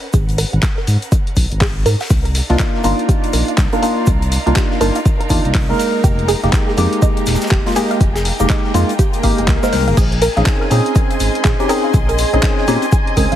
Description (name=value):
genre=deep house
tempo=122 BPM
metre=4/4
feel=swing 61% on 16ths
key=unclear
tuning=A4 = 440 Hz
part: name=rich chamber string section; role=texture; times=0.0-13.4 s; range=Db4 to C6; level=-29 LUFS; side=left 1 dB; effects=sidechain pumping
part: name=analog pluck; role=arpeggios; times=0.1-13.4 s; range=G4 to Gb5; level=-23 LUFS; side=right 2 dB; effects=chorus, phaser, sidechain pumping, tape echo
part: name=smooth synth bass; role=bass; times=0.1-13.4 s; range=Eb1 to Bb2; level=-17 LUFS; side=equal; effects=tube saturation, sidechain pumping
part: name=deep house drum kit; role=drums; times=0.1-13.4 s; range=crash cymbal, handclaps, hi-hat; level=-24 LUFS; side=left 2 dB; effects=overdrive
part: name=electronic kick drum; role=drums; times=0.1-13.3 s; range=none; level=-15 LUFS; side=equal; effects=overdrive
part: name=huge arena drum kit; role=drums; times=0.1-13.3 s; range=hi-hat, shaker, snare drum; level=-32 LUFS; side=left 2 dB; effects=high-pass filter on hats, high-pass filter on snare, high-pass filter on perc, high-pass filter on room
part: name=percussive organ stab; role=stabs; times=2.5-13.4 s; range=Ab3 to Bb4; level=-18 LUFS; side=equal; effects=wide subtle chorus, sidechain pumping, tape echo
part: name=swell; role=sound effects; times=9.1-10.0 s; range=none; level=-25 LUFS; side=right 3 dB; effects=none
part: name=deep dark ambient pad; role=sustained chords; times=11.2-13.4 s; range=Ab4 to C6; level=-25 LUFS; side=right 4 dB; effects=chorus, built-in reverb, sidechain pumping
part: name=soft string machine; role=texture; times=10.0-13.4 s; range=Ab5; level=-26 LUFS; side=equal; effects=ensemble chorus, sidechain pumping
room=light reverb, digital ambience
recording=heavily compressed radio sound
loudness=-13 LUFS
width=side -11 dB against mid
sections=0.0-13.4 A section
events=fade-in on string section 0.0-13.4; filter sweep on synth arpeggio sound 0.0-13.4; swell 9.1-10.0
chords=0.0 Abm11; 2.1 Cm11; 5.8 Fm11; 10.0 Bbm11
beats=| 0.14 0.63 1.12 1.61 | 2.10 2.60 3.09 3.58 | 4.07 4.56 5.05 5.55 | 6.04 6.53 7.02 7.51 | 8.01 8.50 8.99 9.48 | 9.97 10.46 10.96 11.45 | 11.94 12.43 12.92